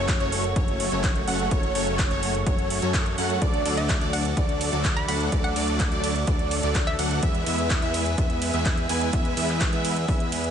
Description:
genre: EDM, festival progressive house.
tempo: 126 BPM.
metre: 4/4.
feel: straight.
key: unclear.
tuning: A4 = 438 Hz.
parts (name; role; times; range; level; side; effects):
lush unison pad; sustained chords; 0.0-10.5 s; A3 to E5; -33 LUFS; equal; chorus, sidechain pumping.
plucky unison lead; arpeggios; 0.0-10.4 s; C#5 to G#5; -31 LUFS; equal; lush chorus, sidechain pumping, dub echo.
supersaw chords; riff; 0.0-10.4 s; F#3 to G#5; -29 LUFS; right 1 dB; vintage 12-bit sampler grit, sidechain pumping, dub echo.
fat analog bass; bass; 0.0-10.5 s; F#1 to F#2; -29 LUFS; equal; tube saturation, sidechain pumping.
electronic kick drum; drums; 0.1-10.2 s; none; -25 LUFS; equal; studio reverb.
house drum kit; drums; 0.1-10.5 s; handclaps, hi-hat, ride cymbal; -30 LUFS; right 2 dB; studio reverb.
hollow square pluck; melody; 3.8-7.3 s; E5 to B5; -35 LUFS; equal; chorus, dub echo.
room: digital ambience.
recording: nothing above 10.7 kHz.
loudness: -22 LUFS.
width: side -8 dB against mid.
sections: 0.0-10.5 A section.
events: none.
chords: 0.0 F#m; 3.4 D; 7.2 E.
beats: 0.09 0.56 1.04 | 1.51 1.99 2.46 2.94 | 3.42 3.89 4.37 4.85 | 5.32 5.80 6.28 6.75 | 7.23 7.70 8.18 8.66 | 9.13 9.61 10.09.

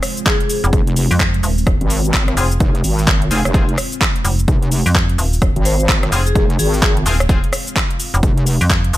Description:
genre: bass house.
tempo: 128 BPM.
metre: 4/4.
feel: swing 62% on 16ths.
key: F minor.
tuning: A4 = 440 Hz.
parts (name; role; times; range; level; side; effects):
dark analog pad; sustained chords; 0.0-9.0 s; Ab3 to F5; -29 LUFS; right 2 dB; chorus, sidechain pumping.
garage drum kit; drums; 0.0-9.0 s; cabasa, handclaps, hi-hat, rim click; -20 LUFS; equal; none.
vibraphone with hard mallets; melody; 0.3-0.7, 5.7-6.8 s; Ab4 to C5; -23 LUFS; left 3 dB; tape echo.
electronic kick drum; drums; 0.3-8.8 s; none; -17 LUFS; equal; overdrive.
metallic FM bass; bass; 0.6-9.0 s; Eb1 to F2; -16 LUFS; equal; overdrive, sidechain pumping.
wobble bass; bass; 0.7-8.6 s; F1 to Ab1; -17 LUFS; equal; chorus, overdrive, sidechain pumping.
band-passed chord stab; stabs; 2.4-7.4 s; C4 to Ab4; -24 LUFS; left 3 dB; chorus, cassette tape, sidechain pumping, tape echo.
room: little or no reverb.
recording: none.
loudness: -13 LUFS.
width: side -15 dB against mid.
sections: 0.0-9.0 A section.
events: none.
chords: 0.0 Fm.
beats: 0.26 | 0.73 1.20 1.67 2.14 | 2.60 3.07 3.54 4.01 | 4.48 4.95 5.42 5.89 | 6.36 6.82 7.29 7.76 | 8.23 8.70.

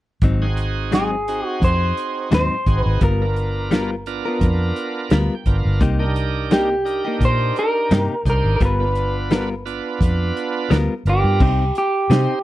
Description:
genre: straight-eighth soul blues.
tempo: 86 BPM.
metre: 4/4.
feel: swing 54% on 16ths.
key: unclear.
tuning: A4 = 440 Hz.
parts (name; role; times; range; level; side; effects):
direct-recorded clean electric guitar; stabs; 0.2-12.3 s; Ab2 to A#4; -23 LUFS; left 4 dB; slapback echo.
vintage muted fingered electric bass; bass; 0.2-12.3 s; G1 to C3; -20 LUFS; equal; none.
warm soul drum kit; drums; 0.2-12.3 s; crash cymbal, hi-hat, kick drum, snare drum; -20 LUFS; equal; none.
bright tonewheel organ; accompaniment; 0.4-12.4 s; B3 to B5; -26 LUFS; right 4 dB; overdrive, slow rotary speaker.
electric guitar through a small old amp; melody; 0.9-12.4 s; G4 to C5; -22 LUFS; equal; slapback echo.
room: little or no reverb.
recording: dry, close 1970s-style studio recording.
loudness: -17 LUFS.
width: side -15 dB against mid.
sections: 0.2-11.4 A section; 11.4-12.4 B section.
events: tonewheel organ fill 4.8-5.8.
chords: 0.2 Ab7; 3.0 G7#9; 5.8 Cm7; 8.6 G7#9; 11.4 Cm.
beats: | 0.22 0.92 1.62 2.32 | 3.02 3.72 4.42 5.12 | 5.82 6.52 7.22 7.92 | 8.62 9.31 10.01 10.71 | 11.41 12.11.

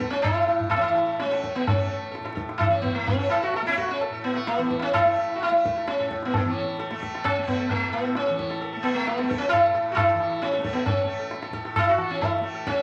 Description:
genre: indian classical, Hindustani.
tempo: 130 BPM.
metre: 5/4.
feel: straight.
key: unclear.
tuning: A4 = 440 Hz.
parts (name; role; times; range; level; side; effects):
sitar; melody; 0.0-12.8 s; A3 to A4; -26 LUFS; equal; none.
tanpura; drone; 0.0-12.8 s; A2 to A3; -37 LUFS; equal; none.
tabla; percussion; 0.0-12.8 s; none; -31 LUFS; equal; none.
room: wet large studio reverb, RT60 1.1 s.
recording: vinyl crackle.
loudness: -25 LUFS.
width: mono.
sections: 0.0-12.8 A section.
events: speeding up 0.0-12.8.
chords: none.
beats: 0.24 0.72 1.19 | 1.67 2.14 2.61 3.08 3.55 | 4.01 4.48 4.95 5.41 5.87 | 6.33 6.79 7.25 7.71 8.17 | 8.62 9.07 9.53 9.98 10.43 | 10.88 11.33 11.77 12.22 12.66.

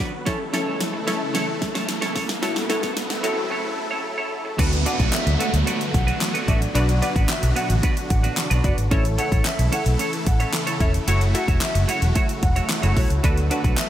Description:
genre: dance-pop.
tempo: 111 BPM.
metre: 4/4.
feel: straight.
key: unclear.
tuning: A4 = 438 Hz.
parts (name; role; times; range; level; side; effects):
supersaw chords; sustained chords; 0.0-13.9 s; B2 to B4; -28 LUFS; equal; sidechain pumping.
twelve-string electric guitar; riff; 0.0-13.8 s; A3 to D5; -28 LUFS; right 4 dB; lush chorus.
pop drum kit; drums; 0.0-13.9 s; crash cymbal, handclaps, hi-hat, kick drum, snare drum; -24 LUFS; equal; none.
riser and downlifter; sound effects; 0.0-8.9 s; none; -31 LUFS; right 2 dB; none.
analog pluck; accompaniment; 0.3-13.9 s; C#4 to E5; -29 LUFS; left 2 dB; chorus, sidechain pumping.
vintage muted fingered electric bass; bass; 4.6-13.7 s; E1 to D2; -21 LUFS; equal; sidechain pumping.
mellow hollow silver concert flute; melody; 4.9-13.9 s; C#5 to F#5; -31 LUFS; equal; sidechain pumping, analog delay.
room: moderate plate reverb, RT60 2.6 s.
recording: dreamy mix soaked in reverb, high-pass filter.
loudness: -19 LUFS.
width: side -12 dB against mid.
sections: 0.0-4.6 A section; 4.6-13.9 B section.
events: build-up 0.0-4.6; drum fill 0.0-3.5; riser 0.0-4.6; break 3.5-4.6; drop 4.6-13.9.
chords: 0.3 A; 2.4 F#m7; 4.6 D6; 6.8 Bm; 8.9 A; 11.1 F#m7; 13.2 D6.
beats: | 0.27 0.81 1.35 1.89 | 2.43 2.97 3.51 4.05 | 4.59 5.13 5.67 6.21 | 6.75 7.29 7.83 8.38 | 8.92 9.46 10.00 10.54 | 11.08 11.62 12.16 12.70 | 13.24 13.78.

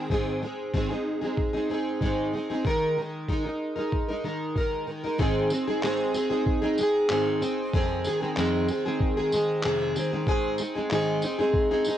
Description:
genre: acoustic pop.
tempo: 94 BPM.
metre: 4/4.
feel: straight.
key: Ab major.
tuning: A4 = 440 Hz.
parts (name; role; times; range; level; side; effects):
picked plugged-in steel-string acoustic guitar; accompaniment; 0.0-12.0 s; F2 to Bb4; -25 LUFS; equal; double-tracked left and right, cassette tape.
lo-fi sampler-style drum kit; drums; 0.1-12.0 s; handclaps, kick drum, tambourine; -30 LUFS; equal; cassette tape.
room: light reverb.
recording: home recording on cassette.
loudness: -24 LUFS.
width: side -11 dB against mid.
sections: 0.0-5.2 A section; 5.2-12.0 B section.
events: none.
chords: 0.1 Ab; 2.6 Ebsus4; 5.2 Ab; 7.7 Fm7; 10.3 Ab.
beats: | 0.10 0.74 1.37 2.01 | 2.65 3.28 3.92 4.55 | 5.19 5.83 6.46 7.10 | 7.73 8.37 9.00 9.64 | 10.27 10.90 11.54.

